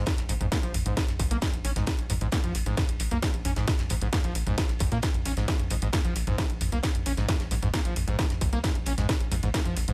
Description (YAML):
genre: driving peak-time techno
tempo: 133 BPM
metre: 4/4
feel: straight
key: Bb minor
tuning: A4 = 439 Hz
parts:
  - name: screaming distorted acid line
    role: riff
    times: 0.0-9.9 s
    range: Bb1 to Db4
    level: -35 LUFS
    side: equal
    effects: distortion, lush chorus, sidechain pumping, delay
  - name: tight sequencer bass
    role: bass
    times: 0.0-9.9 s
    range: Bb1 to Bb2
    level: -32 LUFS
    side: equal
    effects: sidechain pumping
  - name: damped 70s drum kit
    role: drums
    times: 0.1-9.9 s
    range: ride cymbal, snare drum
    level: -47 LUFS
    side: equal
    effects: none
  - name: electronic kick drum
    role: drums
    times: 0.1-9.6 s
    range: none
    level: -31 LUFS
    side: equal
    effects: distortion, overdrive, studio reverb
  - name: techno drum kit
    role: drums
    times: 0.1-9.9 s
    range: hi-hat, snare drum, toms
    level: -34 LUFS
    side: equal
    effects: overdrive, studio reverb
room: small room ambience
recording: none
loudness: -27 LUFS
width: mono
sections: 0.0-9.9 A section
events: none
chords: none